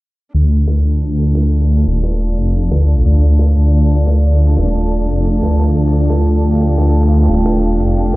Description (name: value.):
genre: dark technical drum and bass.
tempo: 177 BPM.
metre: 4/4.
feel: straight.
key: D phrygian.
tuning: A4 = 439 Hz.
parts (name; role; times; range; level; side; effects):
dark analog pad; sustained chords; 0.3-8.2 s; A3 to G5; -19 LUFS; right 1 dB; chorus.
wide detuned saw bass; bass; 0.3-8.2 s; Eb1 to D2; -12 LUFS; equal; chorus, overdrive.
crunchy breakbeat drum kit; drums; 0.3-8.2 s; hi-hat, ride cymbal, snare drum; -29 LUFS; equal; high-pass filter on cymbals, high-pass filter on hats, high-pass filter on snare, high-pass filter on room.
electronic hi-hat; drums; 0.3-8.2 s; none; barely audible; none; none.
warm studio string section; texture; 0.3-8.2 s; D4 to F5; -23 LUFS; equal; none.
room: little or no reverb.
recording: played on a big sound system in a bare room, stone room reverb, low-pass filter.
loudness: -11 LUFS.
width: side -20 dB against mid.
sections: 0.3-8.2 A section.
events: filter sweep 0.3-8.2.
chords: 0.3 Dm.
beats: | 0.34 0.68 1.02 1.36 | 1.70 2.04 2.37 2.71 | 3.05 3.39 3.73 4.07 | 4.41 4.75 5.09 5.42 | 5.76 6.10 6.44 6.78 | 7.12 7.46 7.80 8.14.